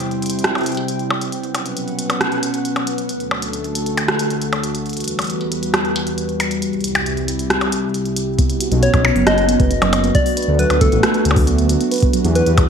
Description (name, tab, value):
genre	IDM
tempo	136 BPM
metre	4/4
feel	straight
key	unclear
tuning	A4 = 440 Hz
part	warbly tape-like pad	sustained chords	0.0-12.7 s	C2 to G5	-21 LUFS	equal	chorus, built-in reverb
part	glitchy drum kit	drums	0.0-12.7 s	hi-hat, percussion blips, rim click	-21 LUFS	equal	gated reverb
part	harp-like synth pluck	arpeggios	8.4-12.6 s	F#3 to B4	-21 LUFS	right 6 dB	chorus
part	electronic kick drum	drums	8.4-12.7 s	none	-17 LUFS	equal	none
part	dark detuned saw bass	bass	8.7-12.6 s	F#1 to E2	-17 LUFS	equal	none
part	soft struck synth lead	melody	8.8-12.7 s	A4 to D#5	-19 LUFS	left 2 dB	chorus, ping-pong delay
room	moderate plate reverb, RT60 1.6 s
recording	bright 1980s-style digital production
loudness	-15 LUFS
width	side -7 dB against mid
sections	0.0-8.4 A section; 8.4-12.7 B section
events	none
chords	0.0 C; 1.3 Bsus2; 3.1 D; 4.9 Emadd9; 6.6 C; 8.4 Bsus2; 10.2 D; 11.9 Emadd9